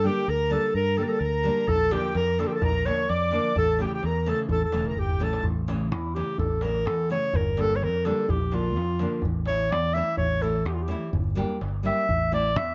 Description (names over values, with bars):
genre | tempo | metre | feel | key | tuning
balkan folk, Balkan wedding band | 127 BPM | 2/4 | swing 54% on 16ths | A phrygian dominant | A4 = 440 Hz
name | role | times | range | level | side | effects
warm clarinet | melody | 0.0-12.7 s | E4 to E5 | -28 LUFS | equal | plate reverb
accordion | second line | 0.0-5.5 s | G5 to D6 | -36 LUFS | equal | light tremolo tuning
nylon-string guitar | accompaniment | 0.0-12.5 s | C#3 to A4 | -34 LUFS | equal | none
fingered electric bass | bass | 0.0-12.7 s | E1 to G2 | -30 LUFS | equal | none
darbuka | percussion | 1.7-12.7 s | none | -34 LUFS | equal | none
room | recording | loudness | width
moderate studio reverb, RT60 0.6 s | nothing above 7.6 kHz | -25 LUFS | mono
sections
0.0-5.4 A section; 5.4-12.7 B section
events
drum fill 4.9-5.4; clarinet solo 5.4-12.7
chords
0.0 Gm; 1.7 Bb; 3.6 A; 7.3 Gm; 8.3 Bb; 9.2 A; 11.1 Gm; 12.1 A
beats
0.27 | 0.74 1.21 | 1.68 2.15 | 2.62 3.09 | 3.56 4.03 | 4.50 4.98 | 5.45 5.92 | 6.40 6.87 | 7.35 7.82 | 8.30 8.77 | 9.24 9.72 | 10.19 10.67 | 11.14 11.62 | 12.09 12.56